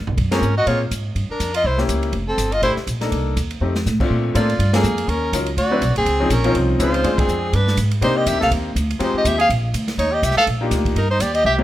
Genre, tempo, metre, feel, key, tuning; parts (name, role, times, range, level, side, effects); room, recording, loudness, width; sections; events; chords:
jazz, small-group swing and bop; 245 BPM; 4/4; swing 57% on 8ths; A4 = 440 Hz
upright bass; bass; 0.0-11.6 s; F1 to C3; -21 LUFS; equal
open jazz drum kit; drums; 0.1-11.6 s; crash cymbal, hi-hat, kick drum, ride cymbal, snare drum, toms; -26 LUFS; right 1 dB
clear soprano saxophone; melody; 0.3-11.5 s; Ab4 to F5; -21 LUFS; left 1 dB; plate reverb
clear trumpet; second line; 0.3-11.6 s; Bb3 to A4; -25 LUFS; right 4 dB
bright upright piano; accompaniment; 0.3-11.6 s; Bb2 to Cb5; -22 LUFS; left 2 dB
light reverb; -16 LUFS; side -14 dB against mid
0.0-4.1 A section; 4.1-11.6 B section
drum fill 0.0, 3.6, 11.5; band accent 0.3, 4.7, 7.2
0.2 Gbmaj9#11; 1.2 Gm7; 1.6 C7b9; 2.1 Fmaj13; 3.1 Cm7; 3.6 F7; 4.1 Bbmaj7; 5.1 Ebm9; 5.6 D9; 6.1 Dbmaj7; 7.0 Dm7b5; 7.5 G; 8.0 Cm9; 9.0 Fm9; 9.5 Bb; 10.0 Ebmaj7